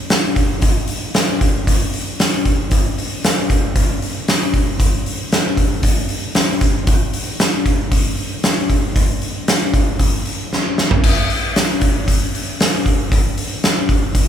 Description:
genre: rock.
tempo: 115 BPM.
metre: 4/4.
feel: straight.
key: none.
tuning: none.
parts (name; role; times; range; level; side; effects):
oversized low-tuned drum kit; drums; 0.1-14.3 s; crash cymbal, hi-hat, kick drum, snare drum, toms; -15 LUFS; equal; none.
room: light reverb.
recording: band playing live in one room.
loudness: -15 LUFS.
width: side -9 dB against mid.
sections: 0.0-14.3 A section.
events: drum fill 10.5-11.0.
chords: none.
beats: 0.11 | 0.63 1.15 1.68 2.20 | 2.72 3.24 3.76 4.28 | 4.80 5.33 5.84 6.37 | 6.88 7.41 7.92 8.45 | 8.96 9.48 10.00 10.52 | 11.04 11.56 12.08 12.60 | 13.12 13.64 14.16.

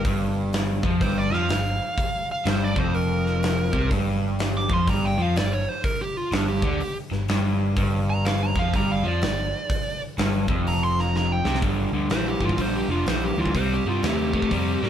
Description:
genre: blues rock power trio and southern rock.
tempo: 124 BPM.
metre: 4/4.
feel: swing 63% on 8ths.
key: G minor.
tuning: A4 = 440 Hz.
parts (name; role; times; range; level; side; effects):
crunchy overdriven guitar; riff; 0.0-14.9 s; F2 to A3; -25 LUFS; equal; none.
overdriven picked electric bass; bass; 0.0-14.9 s; F1 to A2; -26 LUFS; equal; none.
big rock drum kit; drums; 0.0-14.9 s; hi-hat, kick drum, snare drum; -28 LUFS; equal; none.
fuzz lead guitar; melody; 1.0-14.9 s; D4 to D6; -28 LUFS; right 2 dB; distortion.
room: moderate studio reverb, RT60 0.9 s.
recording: band playing live in one room.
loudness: -21 LUFS.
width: side -9 dB against mid.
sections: 0.0-11.6 A section; 11.6-14.9 B section.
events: lead electric guitar solo 0.0-11.6; drum fill 11.1-11.6.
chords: 0.0 N.C.; 11.6 Gm7; 13.6 Cm.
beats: | 0.06 0.54 1.02 1.50 | 1.99 2.47 2.95 3.43 | 3.92 4.40 4.88 5.36 | 5.85 6.33 6.81 7.29 | 7.77 8.26 8.74 9.22 | 9.70 10.18 10.66 11.15 | 11.63 12.11 12.59 13.07 | 13.56 14.04 14.52.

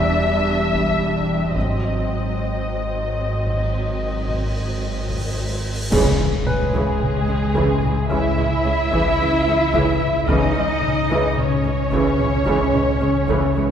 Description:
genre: cinematic, suspense film score.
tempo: 55 BPM.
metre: 4/4.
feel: straight.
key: C# minor from 5.9 s.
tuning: A4 = 440 Hz.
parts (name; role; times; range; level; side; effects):
muted studio violin section; melody; 0.0-13.7 s; G#4 to E5; -27 LUFS; left 3 dB; none.
mellow clarinet; second line; 0.0-5.3 s; D#5 to E5; -30 LUFS; left 1 dB; none.
muted studio violin section; second line; 0.0-13.7 s; G#4 to E5; -28 LUFS; left 3 dB; none.
muted chamber viola section; accompaniment; 0.0-13.6 s; C#3 to D4; -25 LUFS; right 2 dB; none.
warm French horn section; sustained chords; 0.0-12.9 s; F#3 to D4; -30 LUFS; left 1 dB; none.
marimba with medium hard mallets; riff; 0.0-13.7 s; E2 to C#4; -27 LUFS; left 3 dB; none.
muted chamber cello section; bass; 0.0-13.7 s; E2 to E4; -25 LUFS; right 3 dB; none.
muted symphonic double bass section; bass; 0.0-13.6 s; E1 to C#2; -29 LUFS; right 2 dB; none.
sub bass with octave; drone; 0.0-13.7 s; E1 to C#2; -25 LUFS; equal; none.
taiko ensemble; drums; 0.7-13.7 s; none; -29 LUFS; equal; none.
cymbal swell and impact; sound effects; 3.7-10.3 s; none; -30 LUFS; equal; none.
clash cymbals and concert bass drum; percussion; 5.9-8.1 s; none; -27 LUFS; equal; none.
bright baby grand piano; texture; 6.5-13.7 s; B4; -31 LUFS; left 2 dB; none.
room: wet church reverb, RT60 2.9 s.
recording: recorded in a church or concert hall.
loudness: -17 LUFS.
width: side -8 dB against mid.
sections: 0.0-5.9 A section; 5.9-13.7 B section.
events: cymbal swell 3.7-5.9; band accent 5.9-7.0; impact 5.9-10.3.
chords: 0.0 Csus2/E (rootless); 1.6 G#7; 5.9 C#m.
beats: 0.46 | 1.55 2.64 3.73 4.83 | 5.92 7.01 8.10 9.19 | 10.28 11.37 12.46 13.55.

